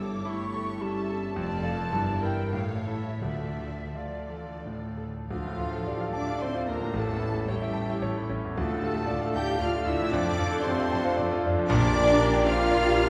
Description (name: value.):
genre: classical, romantic movement for piano and orchestra.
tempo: 80-118 BPM.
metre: 3/4.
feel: rubato.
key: D minor.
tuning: A4 = 440 Hz.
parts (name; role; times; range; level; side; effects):
bright concert grand piano; melody; 0.0-13.1 s; A1 to A5; -32 LUFS; equal; none.
rich studio violin section; melody; 0.0-13.1 s; D5 to G6; -42 LUFS; equal; none.
bright small flute group; second line; 0.0-13.1 s; F4 to D6; -37 LUFS; equal; none.
rich studio violin section; second line; 0.0-13.1 s; F4 to G5; -41 LUFS; equal; none.
rich studio viola section; accompaniment; 0.0-13.1 s; E3 to G4; -38 LUFS; equal; none.
clear studio double bass section; bass; 0.0-13.1 s; F1 to F2; -38 LUFS; equal; none.
warm symphonic cello section; bass; 0.0-13.1 s; F2 to G4; -37 LUFS; equal; none.
timpani; percussion; 3.2-4.3 s; D3; -41 LUFS; equal; none.
mellow clarinet; second line; 5.3-13.1 s; F4 to G5; -40 LUFS; equal; none.
clear trombone section; sustained chords; 5.3-13.1 s; F2 to A3; -43 LUFS; equal; none.
mellow French horn section; sustained chords; 5.3-13.1 s; C#4 to G4; -40 LUFS; equal; none.
dark trumpet section; stabs; 5.3-13.1 s; A4 to Bb4; -38 LUFS; equal; none.
dark bassoon; accompaniment; 5.9-13.1 s; Bb3 to G4; -39 LUFS; equal; none.
room: wet concert hall reverb, RT60 2.0 s.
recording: heard from further back in the room.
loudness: -28 LUFS.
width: mono.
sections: 0.0-5.3 A section; 5.3-13.1 B section.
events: none.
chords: 0.0 A7/G; 1.4 Dm/F; 1.9 Em7b5/G; 2.5 A; 3.2 Dm; 7.0 A7; 8.6 Dm; 10.1 Dm/F; 11.7 Gm/Bb.